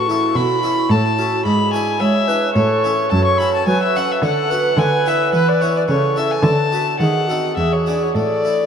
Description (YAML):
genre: classical, baroque-style sonata movement with continuo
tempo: 108 BPM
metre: 3/4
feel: straight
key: A major from 3.1 s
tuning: A4 = 440 Hz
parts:
  - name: dark violin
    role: melody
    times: 0.0-8.7 s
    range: B4 to C#6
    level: -19 LUFS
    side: left 4 dB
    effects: none
  - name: baroque flute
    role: second line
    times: 0.0-8.7 s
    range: E4 to C#5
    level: -19 LUFS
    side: right 3 dB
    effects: none
  - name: harpsichord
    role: accompaniment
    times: 0.0-8.7 s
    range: E2 to B4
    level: -25 LUFS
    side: left 1 dB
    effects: none
  - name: rich cello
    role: bass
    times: 0.0-8.7 s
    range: E2 to G#3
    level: -20 LUFS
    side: right 1 dB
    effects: none
room: wet cathedral reverb, RT60 5.0 s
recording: in a vast, echoing space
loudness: -14 LUFS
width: side -7 dB against mid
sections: 0.0-8.7 A section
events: none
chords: 0.0 A; 1.5 E7/G#; 2.6 A; 3.1 F#m; 4.2 Bm7/D; 4.8 E5/D; 5.9 A/C#; 6.4 Bm7/D; 7.0 D#dim7; 7.6 E7; 8.2 A5